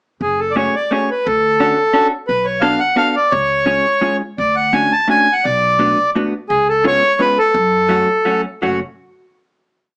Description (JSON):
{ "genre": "musette waltz", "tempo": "171 BPM", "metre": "3/4", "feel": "rubato", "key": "F# harmonic minor", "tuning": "A4 = 440 Hz", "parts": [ { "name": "accordion", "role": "melody", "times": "0.2-8.8 s", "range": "F#4 to A5", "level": "-13 LUFS", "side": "equal", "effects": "plate reverb" }, { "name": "upright bass", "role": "bass", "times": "0.2-8.8 s", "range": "F#1 to F#2", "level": "-26 LUFS", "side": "equal", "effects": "none" }, { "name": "vintage hollow-body jazz guitar", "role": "accompaniment", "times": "0.6-8.8 s", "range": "F#3 to A4", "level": "-18 LUFS", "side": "equal", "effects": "none" } ], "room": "moderate small room reverb, RT60 0.5 s", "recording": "small speaker sound", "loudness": "-12 LUFS", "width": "side -34 dB against mid", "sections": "0.2-8.6 A section; 8.6-9.7 final chord", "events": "none", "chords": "0.2 F#madd9; 1.3 Dmaj7; 2.3 Bm7; 3.3 C#; 4.4 Dmaj7; 5.4 Bm7; 6.5 C#7; 7.5 F#m" }